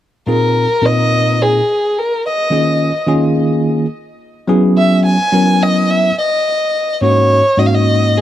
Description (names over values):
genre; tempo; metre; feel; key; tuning
jazz; 107 BPM; 4/4; straight; Bb minor; A4 = 440 Hz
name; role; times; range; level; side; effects
dark violin; melody; 0.3-8.2 s; Ab4 to Ab5; -14 LUFS; equal; none
bell-like tine electric piano; accompaniment; 0.3-8.2 s; Ab2 to Bb4; -13 LUFS; equal; fast stereo tremolo, wide subtle chorus
room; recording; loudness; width
little or no reverb; dry, close 1970s-style studio recording; -11 LUFS; side -12 dB against mid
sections
0.3-8.2 A section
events
none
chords
0.3 Bb9sus4; 2.5 Eb9sus4; 4.5 Gb9sus4; 7.0 Ab9sus4